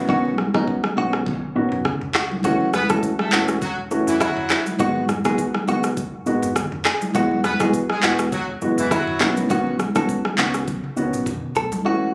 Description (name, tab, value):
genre	afrobeats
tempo	102 BPM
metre	4/4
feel	swing 55% on 16ths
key	unclear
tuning	A4 = 440 Hz
part	dark baby grand piano	accompaniment	0.0-12.1 s	D#3 to F#4	-25 LUFS	equal	none
part	hollow-body short-scale fingered electric bass	bass	0.0-11.7 s	E1 to B2	-35 LUFS	equal	none
part	direct-recorded clean electric guitar	melody	0.1-12.1 s	D#4 to A4	-28 LUFS	equal	tape echo
part	afro-pop drum kit	drums	0.1-11.8 s	handclaps, kick drum, rim click, shaker, toms	-26 LUFS	equal	none
part	congas	percussion	0.1-11.8 s	none	-30 LUFS	equal	none
part	warm horn section	second line	2.7-9.3 s	E3 to B4	-28 LUFS	equal	none
room	light reverb, small room ambience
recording	recorded on a phone in the room, studio ambience, compression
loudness	-21 LUFS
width	mono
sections	0.0-11.9 A section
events	hi-hats muted 0.1-2.4; drum fill 10.7-11.9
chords	0.0 Badd9; 2.4 F#m7; 4.8 G#m7; 7.1 Eadd9; 9.2 Badd9